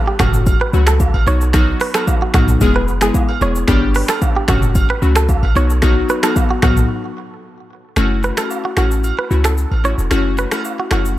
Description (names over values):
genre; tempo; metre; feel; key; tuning
afrobeats; 112 BPM; 4/4; straight; F# dorian; A4 = 440 Hz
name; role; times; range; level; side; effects
glassy digital keys; accompaniment; 0.0-11.2 s; F#3 to G#4; -20 LUFS; left 4 dB; chorus
direct-recorded clean electric guitar; riff; 0.1-11.0 s; F#4 to C#5; -22 LUFS; right 4 dB; spring reverb, digital delay
clean 808-style bass; bass; 0.2-11.2 s; E1 to C#2; -16 LUFS; equal; none
afro-pop drum kit; drums; 0.2-11.2 s; finger snaps, hi-hat, kick drum, rim click, shaker, toms; -17 LUFS; equal; none
agogo bells and woodblock; percussion; 0.2-11.0 s; none; -26 LUFS; right 7 dB; none
room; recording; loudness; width
digital ambience; none; -13 LUFS; side -15 dB against mid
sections
0.0-8.0 A section; 8.0-11.2 B section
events
break 6.9-8.0; kick muted 8.0-11.2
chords
0.2 F#m; 1.3 B; 2.6 E; 3.7 G; 4.5 F#m; 5.6 B; 6.9 N.C.; 8.0 F#m7